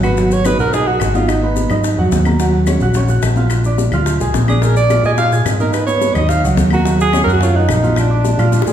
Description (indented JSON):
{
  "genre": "Afro-Cuban jazz",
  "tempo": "215 BPM",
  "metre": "4/4",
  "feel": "straight",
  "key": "Eb minor",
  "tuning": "A4 = 438 Hz",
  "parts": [
    { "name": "clear alto saxophone", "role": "melody", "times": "0.0-1.7, 4.5-8.7 s", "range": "D4 to F5", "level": "-18 LUFS", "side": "right 2 dB", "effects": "none" },
    { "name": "warm grand piano", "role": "accompaniment", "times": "0.0-8.7 s", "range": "Gb3 to Ab6", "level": "-18 LUFS", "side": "right 2 dB", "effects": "none" },
    { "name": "fingered electric bass", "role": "bass", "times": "0.0-8.7 s", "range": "Ab1 to Bb2", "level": "-15 LUFS", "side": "equal", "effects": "none" },
    { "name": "bongos", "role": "percussion", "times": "0.0-8.7 s", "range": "none", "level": "-24 LUFS", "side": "left 5 dB", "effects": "none" },
    { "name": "claves", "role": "percussion", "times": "0.0-8.5 s", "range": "none", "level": "-31 LUFS", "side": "left 6 dB", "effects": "none" },
    { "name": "congas", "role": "percussion", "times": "0.0-8.7 s", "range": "none", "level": "-24 LUFS", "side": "equal", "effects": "none" },
    { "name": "maracas", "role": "percussion", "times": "0.0-8.7 s", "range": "none", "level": "-31 LUFS", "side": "left 6 dB", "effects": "none" }
  ],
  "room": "wet recital hall reverb, RT60 1.5 s",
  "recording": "recorded in a church or concert hall",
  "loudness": "-12 LUFS",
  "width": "side -10 dB against mid",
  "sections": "0.0-8.7 A section",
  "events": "drum fill 8.5",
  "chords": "0.2 Abm7; 2.4 Ebm7; 3.5 Bb7; 5.7 Abm7; 6.9 Ebm7; 8.0 Bb7"
}